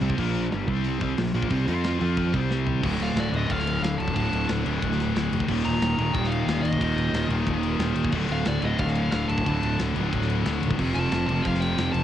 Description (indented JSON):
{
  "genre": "heavy metal",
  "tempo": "181 BPM",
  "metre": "4/4",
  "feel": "straight",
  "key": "D phrygian",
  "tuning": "A4 = 440 Hz",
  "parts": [
    { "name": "scooped high-gain guitar", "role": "riff", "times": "0.0-12.0 s", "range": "D2 to F4", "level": "-28 LUFS", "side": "left 7 dB", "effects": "distortion, cassette tape" },
    { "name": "sludgy distorted guitar", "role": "riff", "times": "0.0-12.0 s", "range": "D2 to F4", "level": "-28 LUFS", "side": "right 7 dB", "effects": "overdrive, cassette tape" },
    { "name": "fuzz fingered electric bass", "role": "bass", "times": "0.0-12.0 s", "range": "D1 to F2", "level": "-28 LUFS", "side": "equal", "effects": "overdrive" },
    { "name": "tight metal drum kit", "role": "drums", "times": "0.0-12.0 s", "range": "crash cymbal, hi-hat, kick drum, ride cymbal, snare drum, toms", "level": "-32 LUFS", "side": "equal", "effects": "cassette tape" },
    { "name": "high-gain lead guitar", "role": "melody", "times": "3.0-12.0 s", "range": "D5 to Bb5", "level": "-31 LUFS", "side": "left 1 dB", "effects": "distortion, cassette tape" }
  ],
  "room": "small room ambience",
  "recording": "home recording on cassette",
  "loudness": "-22 LUFS",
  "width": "side -11 dB against mid",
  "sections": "0.0-2.8 A section; 2.8-12.0 B section",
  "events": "drum fill 2.5-2.8",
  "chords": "0.0 Bb5; 0.7 C5; 1.0 Bb5; 1.7 F5; 2.3 C5; 2.8 Dm; 5.5 Eb5; 8.1 Dm; 10.8 F"
}